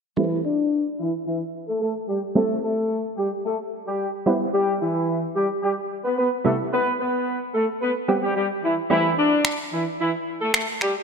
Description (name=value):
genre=dance-pop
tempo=110 BPM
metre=4/4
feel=straight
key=A minor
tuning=A4 = 442 Hz
part: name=warm horn section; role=melody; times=0.2-10.9 s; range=E3 to D5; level=-22 LUFS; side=left 1 dB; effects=low-pass filter, slapback echo, tape echo
part: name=wavetable chord stab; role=accompaniment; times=0.2-11.0 s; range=C3 to G4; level=-24 LUFS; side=right 2 dB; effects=low-pass filter, slapback echo
part: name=electronic finger snaps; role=drums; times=9.4-10.9 s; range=none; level=-22 LUFS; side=equal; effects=overdrive
room=moderate lush hall reverb, RT60 1.8 s, small room ambience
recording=big arena sound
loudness=-21 LUFS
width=side -5 dB against mid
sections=0.2-11.0 A section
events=filter sweep 0.2-11.0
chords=0.2 Am7; 4.3 Cmaj7; 8.9 Am7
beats=| 0.18 0.72 1.27 1.81 | 2.36 2.90 3.45 3.99 | 4.54 5.08 5.63 6.18 | 6.72 7.27 7.81 8.36 | 8.90 9.45 9.99 10.54